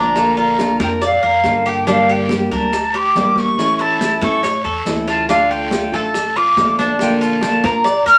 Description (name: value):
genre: latin, Cuban son and guajira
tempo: 140 BPM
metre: 4/4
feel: straight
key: unclear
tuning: A4 = 437 Hz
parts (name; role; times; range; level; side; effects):
- silver concert flute; melody; 0.0-8.2 s; F5 to F6; -18 LUFS; equal; none
- nylon-string guitar; accompaniment; 0.0-7.9 s; D3 to G4; -22 LUFS; equal; none
- Cuban tres; arpeggios; 0.0-8.2 s; D4 to D5; -24 LUFS; equal; none
- upright bass; bass; 0.0-8.2 s; A1 to Bb2; -33 LUFS; equal; none
- bongos; percussion; 0.2-8.1 s; none; -29 LUFS; equal; none
- congas; percussion; 0.2-8.2 s; none; -27 LUFS; equal; none
- guiro; percussion; 0.2-8.2 s; none; -35 LUFS; equal; none
- maracas; percussion; 0.2-8.2 s; none; -38 LUFS; equal; none
room: wet studio reverb, RT60 0.6 s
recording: none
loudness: -16 LUFS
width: mono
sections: 0.0-8.2 A section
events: none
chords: 0.2 Bb; 1.9 Gm; 3.6 A; 5.3 Dm; 7.0 Bb